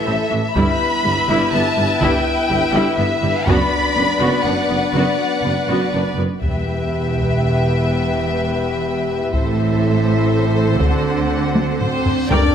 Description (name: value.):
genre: cinematic, epic orchestral film score.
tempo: 123 BPM.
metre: 3/4.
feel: straight.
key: E minor.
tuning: A4 = 438 Hz.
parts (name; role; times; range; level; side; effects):
warm symphonic violin section; melody; 0.0-12.5 s; E5 to B5; -23 LUFS; left 2 dB; none.
clear studio violin section; second line; 0.0-12.5 s; A4 to E5; -23 LUFS; left 1 dB; none.
warm symphonic viola section; accompaniment; 0.0-12.5 s; E3 to D5; -24 LUFS; equal; none.
mellow French horn section; sustained chords; 0.0-12.5 s; A3 to G4; -23 LUFS; left 4 dB; none.
warm symphonic cello section; bass; 0.1-12.4 s; E2 to D3; -24 LUFS; right 2 dB; none.
warm symphonic double bass section; bass; 0.1-12.4 s; E1 to D2; -23 LUFS; right 3 dB; none.
warm tuba; bass; 0.1-6.3, 12.3-12.4 s; F#1 to A1; -25 LUFS; right 3 dB; none.
taiko ensemble; drums; 0.6-3.9, 6.4-12.5 s; none; -22 LUFS; equal; none.
timpani; percussion; 6.4-7.1 s; E2; -28 LUFS; equal; none.
reverse cymbal and sub drop; sound effects; 12.0-12.5 s; none; -28 LUFS; equal; none.
room: moderate scoring stage reverb, RT60 1.4 s.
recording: none.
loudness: -15 LUFS.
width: side -8 dB against mid.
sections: 0.0-6.4 A section; 6.4-12.3 B section.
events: drum fill 11.6-12.3; reverse cymbal 12.0-12.3; impact 12.3.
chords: 0.0 Am; 0.6 Em/G; 3.5 Bm/F#; 6.4 Em; 9.3 Am; 10.8 D7.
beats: 0.05 | 0.55 1.04 1.53 | 2.02 2.50 2.98 | 3.47 3.96 4.44 | 4.94 5.43 5.93 | 6.42 6.91 7.40 | 7.88 8.36 8.85 | 9.33 9.82 10.31 | 10.80 11.31 11.80 | 12.30.